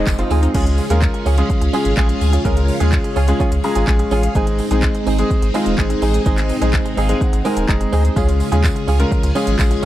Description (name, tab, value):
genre	dance-pop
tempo	126 BPM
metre	4/4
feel	straight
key	Db major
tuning	A4 = 440 Hz
part	clear concert grand piano	accompaniment	0.0-9.8 s	Ab3 to Bb5	-21 LUFS	left 1 dB	sidechain pumping
part	string machine, full ensemble	sustained chords	0.0-9.8 s	Db3 to Ab4	-24 LUFS	equal	phaser, ensemble chorus, sidechain pumping
part	wide unison pluck	arpeggios	0.0-0.5 s	Ab3 to Eb4	-29 LUFS	left 2 dB	none
part	direct-recorded clean electric guitar	riff	0.0-9.8 s	C4 to Ab4	-24 LUFS	right 5 dB	wide subtle chorus
part	warm sub bass	bass	0.0-9.8 s	Eb1 to Eb2	-17 LUFS	equal	sidechain pumping
part	noise sweep	sound effects	0.0-0.5 s	none	-35 LUFS	left 1 dB	none
part	house drum kit	drums	0.1-9.8 s	crash cymbal, handclaps, hi-hat, kick drum, shaker	-20 LUFS	equal	none
part	tambourine	percussion	0.1-0.4, 8.2-9.8 s	none	-39 LUFS	right 9 dB	none
room	little or no reverb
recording	dry, close 1970s-style studio recording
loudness	-14 LUFS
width	side -14 dB against mid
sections	0.5-9.8 A section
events	noise sweep 0.0-0.5; grand piano fill 3.4-4.4, 6.7-8.2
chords	0.0 Ab; 0.5 Db; 4.4 Ab; 8.2 Db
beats	0.07 | 0.55 1.02 1.50 1.97 | 2.45 2.92 3.40 3.88 | 4.35 4.83 5.31 5.78 | 6.26 6.74 7.21 7.69 | 8.16 8.64 9.12 9.59